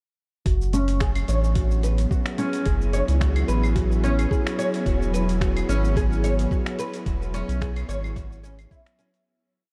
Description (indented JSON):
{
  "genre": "organic downtempo",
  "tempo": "109 BPM",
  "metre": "4/4",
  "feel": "swing 54% on 16ths",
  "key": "F# minor",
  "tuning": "A4 = 440 Hz",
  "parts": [
    { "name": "ethereal airy pad", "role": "sustained chords", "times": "1.3-9.3 s", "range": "F#3 to G#4", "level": "-32 LUFS", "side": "equal", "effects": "ensemble chorus, built-in reverb, sidechain pumping, shimmer reverb" },
    { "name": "oud", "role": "arpeggios", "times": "0.5-9.1 s", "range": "C#4 to C#5", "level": "-31 LUFS", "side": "equal", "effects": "low-pass filter, delay, shimmer reverb" },
    { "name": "round analog bass", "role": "bass", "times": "0.5-8.7 s", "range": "E1 to C#2", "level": "-25 LUFS", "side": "equal", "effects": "none" },
    { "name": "dusty soul sampler-style drum kit", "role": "drums", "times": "0.5-9.2 s", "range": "claves, finger snaps, hi-hat, shaker", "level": "-39 LUFS", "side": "equal", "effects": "none" },
    { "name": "electronic kick drum", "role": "drums", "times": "0.5-8.8 s", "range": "none", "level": "-28 LUFS", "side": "equal", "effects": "none" }
  ],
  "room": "moderate huge ambient reverb, RT60 7.5 s",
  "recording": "dreamy mix soaked in reverb",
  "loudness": "-23 LUFS",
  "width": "mono",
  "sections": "0.5-9.3 groove",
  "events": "filter sweep on oud 0.5-9.3; fade-out 6.3-9.3",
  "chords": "0.5 F#m7; 4.9 E"
}